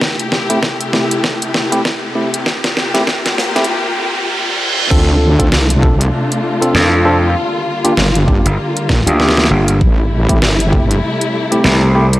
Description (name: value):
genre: glitch hop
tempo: 98 BPM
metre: 4/4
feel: swing 59% on 16ths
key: D minor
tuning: A4 = 440 Hz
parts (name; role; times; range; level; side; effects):
- dark symphonic string section; sustained chords; 0.0-12.2 s; C3 to G4; -19 LUFS; left 2 dB; sidechain pumping
- electronic kick drum; drums; 0.0-10.9 s; none; -15 LUFS; equal; overdrive, high-pass filter on kick, high-pass filter on room
- pop drum kit; drums; 0.0-12.2 s; crash cymbal, hi-hat, rim click, snare drum; -17 LUFS; equal; overdrive
- riser and reverse cymbal; sound effects; 0.6-4.9 s; none; -21 LUFS; right 2 dB; none
- tine electric piano; stabs; 0.5-12.1 s; A3 to A4; -18 LUFS; equal; sidechain pumping, analog delay
- wobble bass; bass; 4.9-11.0 s; G1 to D2; -14 LUFS; equal; chorus, tube saturation
- gritty slap bass; bass; 6.7-12.2 s; G1 to F2; -12 LUFS; equal; overdrive
room: moderate lush hall reverb, RT60 2.2 s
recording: dry, gritty hardware recording, cassette tape, high-pass filter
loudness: -11 LUFS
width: side -16 dB against mid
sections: 0.0-4.9 A section; 4.9-12.2 B section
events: build-up 0.0-4.9; drum fill 0.0-3.7; filter sweep 0.0-4.9; riser 0.6-4.9; reverse cymbal 3.7-4.9; drop 4.9-12.2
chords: 0.0 Am7; 2.5 C7sus4; 4.9 Dm7; 7.4 Gm7; 9.8 Am7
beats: | 0.01 0.63 1.24 1.85 | 2.46 3.08 3.69 4.30 | 4.91 5.53 6.14 6.75 | 7.36 7.97 8.59 9.20 | 9.81 10.42 11.04 11.65